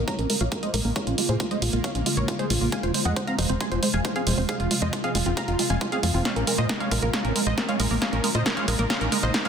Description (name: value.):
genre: uplifting trance.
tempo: 136 BPM.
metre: 4/4.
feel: straight.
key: Bb minor.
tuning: A4 = 440 Hz.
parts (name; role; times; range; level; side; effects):
supersaw stab; melody; 0.0-9.5 s; F4 to C6; -30 LUFS; right 1 dB; sidechain pumping, low-pass filter, ping-pong delay.
analog pluck; second line; 0.0-9.5 s; F4 to C6; -34 LUFS; left 1 dB; chorus, sidechain pumping, ping-pong delay.
shimmering ambient pad; sustained chords; 0.0-9.5 s; C3 to F4; -31 LUFS; right 1 dB; chorus, built-in reverb, phaser, sidechain pumping.
liquid acid bass; arpeggios; 0.0-9.5 s; Ab3 to F4; -30 LUFS; right 3 dB; wide subtle chorus, sidechain pumping, ping-pong delay.
tight sequencer bass; bass; 0.0-9.3 s; F1 to Bb2; -26 LUFS; equal; sidechain pumping.
riser; sound effects; 3.8-9.5 s; none; -39 LUFS; equal; none.
electronic kick drum; drums; 0.1-9.4 s; none; -34 LUFS; left 1 dB; high-pass filter on kick, high-pass filter on room.
punchy analog drum machine; drums; 0.1-9.5 s; hi-hat, snare drum; -28 LUFS; right 1 dB; none.
room: moderate recital hall reverb, RT60 1.5 s.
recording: dense, heavily limited modern master.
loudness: -22 LUFS.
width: side -7 dB against mid.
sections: 0.0-9.5 A section.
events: build-up 0.0-9.5; filter sweep on supersaw synth 0.0-9.5; filter sweep on acid bass 0.0-9.5; filter sweep on synth pluck 0.0-9.5; drum fill 6.3-9.5.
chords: 0.0 Bbm7; 2.7 Fm; 6.3 Bbm7.